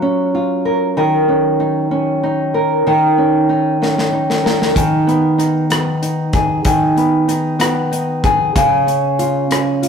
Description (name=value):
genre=six-eight pop ballad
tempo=63 BPM (dotted quarters)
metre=6/8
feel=straight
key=Eb minor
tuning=A4 = 440 Hz
part: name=nylon-string guitar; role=accompaniment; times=0.0-9.9 s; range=Db3 to Bb4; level=-14 LUFS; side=equal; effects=none
part: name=modern studio drum kit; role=drums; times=3.8-9.9 s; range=hi-hat, kick drum, rim click, snare drum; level=-19 LUFS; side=left 1 dB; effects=none
room=moderate stone room reverb, RT60 1.4 s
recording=rough rehearsal-room recording, warm saturation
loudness=-13 LUFS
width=side -6 dB against mid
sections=0.0-9.9 A section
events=drum fill 3.8-4.8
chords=0.0 Gbmaj7; 1.0 Eb5; 4.8 Abm/Eb; 8.6 Db